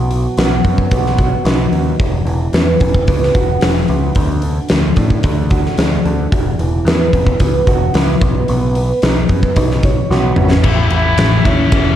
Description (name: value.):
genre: quiet-loud alternative rock.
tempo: 111 BPM.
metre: 4/4.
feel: straight.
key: unclear.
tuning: A4 = 441 Hz.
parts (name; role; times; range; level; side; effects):
fingerpicked old ladder-braced acoustic guitar; arpeggios; 0.0-12.0 s; E2 to C#5; -19 LUFS; right 3 dB; tape echo, slapback echo.
growling picked electric bass; bass; 0.0-11.9 s; E1 to A2; -17 LUFS; equal; overdrive.
huge arena drum kit; drums; 0.1-11.8 s; crash cymbal, hi-hat, kick drum, ride cymbal, snare drum, toms; -14 LUFS; left 1 dB; none.
rich cello; melody; 10.1-12.0 s; B3 to E4; -18 LUFS; left 1 dB; none.
scooped high-gain guitar; riff; 10.6-12.0 s; E2 to A3; -18 LUFS; left 5 dB; distortion.
room: moderate concert hall reverb, RT60 2.0 s, studio reverb.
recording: big arena sound, cassette tape.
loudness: -11 LUFS.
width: side -11 dB against mid.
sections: 0.0-10.6 A section; 10.6-12.0 B section.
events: drum fill 10.1-10.6.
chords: 0.0 B; 2.0 Esus2; 4.2 D; 6.3 Esus2; 8.2 Badd9; 10.6 A5.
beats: 0.38 0.92 1.46 | 2.00 2.54 3.08 3.62 | 4.16 4.70 5.24 5.78 | 6.32 6.86 7.40 7.94 | 8.48 9.02 9.56 10.10 | 10.64 11.18 11.72.